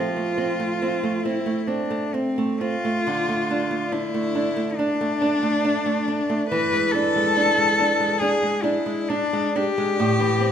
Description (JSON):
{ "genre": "romantic duo for cello and classical guitar", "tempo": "62-74 BPM", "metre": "4/4", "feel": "rubato", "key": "unclear", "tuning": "A4 = 440 Hz", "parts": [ { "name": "warm cello", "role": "melody", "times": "0.0-10.5 s", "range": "C4 to B4", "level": "-23 LUFS", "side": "left 4 dB", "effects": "none" }, { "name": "nylon-string guitar", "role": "accompaniment", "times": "0.0-10.5 s", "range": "A2 to D4", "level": "-23 LUFS", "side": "right 3 dB", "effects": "none" } ], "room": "moderate recital hall reverb, RT60 1.7 s", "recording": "minimal, uncompressed stereo recording", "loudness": "-20 LUFS", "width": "side -8 dB against mid", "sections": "0.0-10.5 A section", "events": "none", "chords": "0.0 F; 3.1 Dm; 6.5 E7; 10.0 Am" }